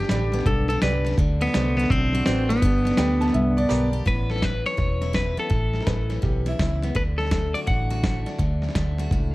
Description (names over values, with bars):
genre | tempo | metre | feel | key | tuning
honky-tonk and classic country | 166 BPM | 4/4 | swing 63% on 8ths | G major | A4 = 440 Hz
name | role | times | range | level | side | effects
clean electric guitar | melody | 0.0-9.3 s | B3 to F#5 | -25 LUFS | equal | none
picked steel-string acoustic guitar | accompaniment | 0.0-9.3 s | E2 to G4 | -30 LUFS | left 2 dB | none
vintage muted fingered electric bass | bass | 0.0-9.3 s | E1 to D2 | -25 LUFS | equal | none
dusty soul sampler-style drum kit | drums | 0.0-9.2 s | hi-hat, kick drum, snare drum | -25 LUFS | equal | none
bright grand piano | accompaniment | 0.1-4.0 s | F#4 to D5 | -35 LUFS | right 5 dB | none
clear upright piano | second line | 3.0-6.9 s | E4 to A5 | -32 LUFS | right 1 dB | none
room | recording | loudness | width
light reverb, small room ambience | cassette tape | -20 LUFS | side -19 dB against mid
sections
0.0-4.1 A section; 4.1-9.3 B section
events
kick and snare drop out 3.3-4.1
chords
0.0 G; 1.2 D7; 2.6 G; 4.1 Aadd9; 6.9 D